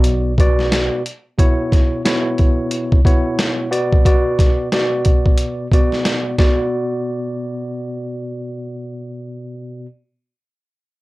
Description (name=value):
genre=hip hop, boom-bap hip-hop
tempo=90 BPM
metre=4/4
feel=swing 61% on 16ths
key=B minor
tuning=A4 = 441 Hz
part: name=tine electric piano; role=accompaniment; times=0.0-9.9 s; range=B2 to D5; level=-20 LUFS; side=equal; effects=fast stereo tremolo, high-pass filter, low-pass filter
part: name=woody fretless electric bass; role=bass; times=0.0-0.9 s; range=B1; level=-20 LUFS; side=equal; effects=none
part: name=boom bap sampler-style drum kit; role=drums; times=0.0-6.6 s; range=hi-hat, kick drum, snare drum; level=-14 LUFS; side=equal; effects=none
room=light reverb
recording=worn, warbling old tape, cassette tape, warbly pitch drift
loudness=-15 LUFS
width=side -20 dB against mid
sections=0.0-6.7 A section; 6.7-9.4 B section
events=none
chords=0.0 Bm; 1.4 C#m/B; 3.7 Bm